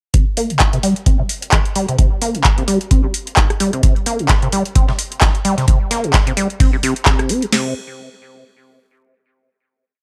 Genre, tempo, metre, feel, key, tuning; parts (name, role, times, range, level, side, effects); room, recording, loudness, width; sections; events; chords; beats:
acid house; 130 BPM; 4/4; swing 56% on 16ths; C minor; A4 = 443 Hz
liquid acid bass; riff; 0.1-7.7 s; C3 to C4; -22 LUFS; equal; phaser, overdrive, subtle chorus, sidechain pumping, tape echo
booming analog drum machine; drums; 0.1-7.6 s; crash cymbal, kick drum, snare drum; -17 LUFS; equal
booming analog drum machine; drums; 0.1-7.5 s; handclaps, hi-hat, rim click; -21 LUFS; equal
breakbeat sampler-style drum kit; drums; 3.8-7.5 s; hi-hat, snare drum; -32 LUFS; equal
digital ambience; dry, gritty hardware recording; -16 LUFS; mono
0.1-7.5 groove; 7.5-9.4 final chord
filter sweep on acid bass 0.1-7.5
| 0.14 0.60 1.06 1.52 | 1.99 2.45 2.91 3.37 | 3.83 4.29 4.76 5.22 | 5.68 6.14 6.60 7.06 | 7.53